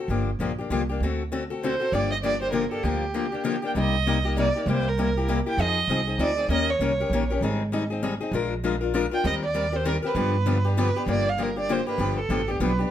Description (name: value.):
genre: acoustic string swing (jazz manouche).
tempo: 197 BPM.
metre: 3/4.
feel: swing 59% on 8ths.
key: G minor, C minor from 3.8 s.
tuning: A4 = 444 Hz.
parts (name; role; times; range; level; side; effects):
picked steel-string acoustic guitar; accompaniment; 0.0-12.9 s; C3 to Bb4; -26 LUFS; left 5 dB; none.
upright bass; bass; 0.1-12.9 s; G1 to G2; -27 LUFS; right 1 dB; none.
warm violin; melody; 1.6-12.9 s; G4 to G5; -27 LUFS; right 4 dB; plate reverb.
room: moderate studio reverb, RT60 0.7 s.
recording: none.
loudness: -22 LUFS.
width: side -10 dB against mid.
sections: 0.0-3.8 A section; 3.8-11.1 B section; 11.1-12.9 A section.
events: none.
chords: 0.1 Gm7; 1.0 D7; 1.9 Gm7; 3.8 Cm7; 4.7 C7; 5.6 Fm7; 6.5 Eb7; 7.4 Abmaj7; 8.3 Bb7; 9.2 Eb6; 10.2 G7; 11.1 Gm7; 12.0 G7.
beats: | 0.10 0.40 0.70 | 1.01 1.31 1.62 | 1.92 2.23 2.53 | 2.84 3.14 3.45 | 3.75 4.06 4.36 | 4.67 4.97 5.28 | 5.58 5.89 6.19 | 6.50 6.80 7.11 | 7.41 7.72 8.02 | 8.33 8.63 8.94 | 9.24 9.55 9.85 | 10.16 10.46 10.77 | 11.07 11.38 11.68 | 11.99 12.29 12.60 | 12.90.